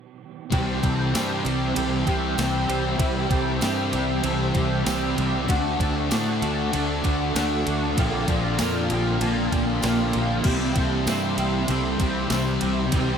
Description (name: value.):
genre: rock, shoegaze and dream pop.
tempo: 97 BPM.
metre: 4/4.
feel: straight.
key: unclear.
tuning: A4 = 439 Hz.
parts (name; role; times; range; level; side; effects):
granular cloud pad; sustained chords; 1.7-13.2 s; Bb3 to E6; -32 LUFS; right 1 dB; built-in reverb, wide subtle chorus.
picked twelve-string acoustic guitar; arpeggios; 0.5-13.2 s; F#4 to A4; -33 LUFS; left 1 dB; analog chorus, diffuse ambient delay.
clean electric guitar; riff; 0.5-13.2 s; Bb2 to G4; -29 LUFS; right 8 dB; reverse reverb.
cranked stack guitar; riff; 0.5-13.2 s; Bb2 to D4; -30 LUFS; equal; overdrive, ensemble chorus.
thick fuzz guitar; riff; 0.5-13.2 s; Bb2 to D4; -27 LUFS; left 7 dB; distortion, lush chorus.
fuzz fingered electric bass; bass; 0.5-13.2 s; Bb1 to A2; -28 LUFS; equal; overdrive.
crisp 8-bit digital drum machine; drums; 0.5-13.1 s; crash cymbal, kick drum, ride cymbal, snare drum; -28 LUFS; equal; none.
tambourine; percussion; 1.1-12.5 s; none; -39 LUFS; right 8 dB; none.
room: moderate huge ambient reverb, RT60 4.1 s.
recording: dreamy mix soaked in reverb.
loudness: -21 LUFS.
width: side -7 dB against mid.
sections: 0.5-13.2 A section.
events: none.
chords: 0.5 C; 5.5 D; 8.0 Bbadd9; 10.4 C.